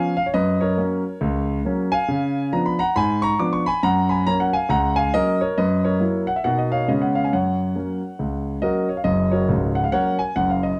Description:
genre	jazz, stride piano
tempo	138 BPM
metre	4/4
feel	swing 62% on 8ths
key	F# major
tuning	A4 = 442 Hz
part	clear concert grand piano	solo	0.0-10.8 s	C#1 to D6	-21 LUFS	equal	none
room	moderate club reverb, RT60 0.7 s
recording	none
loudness	-21 LUFS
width	mono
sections	0.0-9.1 A section; 9.1-10.8 A section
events	none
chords	0.3 F#; 2.1 C#7b9; 3.8 F#; 5.6 F#7; 6.4 Bmaj7; 6.9 C#5; 7.3 F#

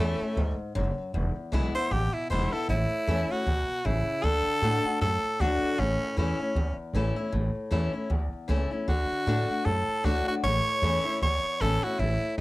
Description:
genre	rockabilly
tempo	155 BPM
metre	4/4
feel	swing 58% on 8ths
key	A major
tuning	A4 = 440 Hz
part	raspy tenor saxophone	melody	0.0-12.4 s	A3 to C#5	-28 LUFS	equal	none
part	picked old ladder-braced acoustic guitar	accompaniment	0.0-12.4 s	E2 to F#4	-31 LUFS	left 3 dB	none
part	upright bass	bass	0.0-12.4 s	E1 to A2	-28 LUFS	equal	none
room	light reverb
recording	none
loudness	-25 LUFS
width	side -19 dB against mid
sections	0.0-2.7 A section; 2.7-12.4 B section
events	tenor saxophone solo 0.0-2.7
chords	0.0 A; 1.1 E; 2.7 A; 4.2 D; 5.8 A; 8.9 D; 10.4 A

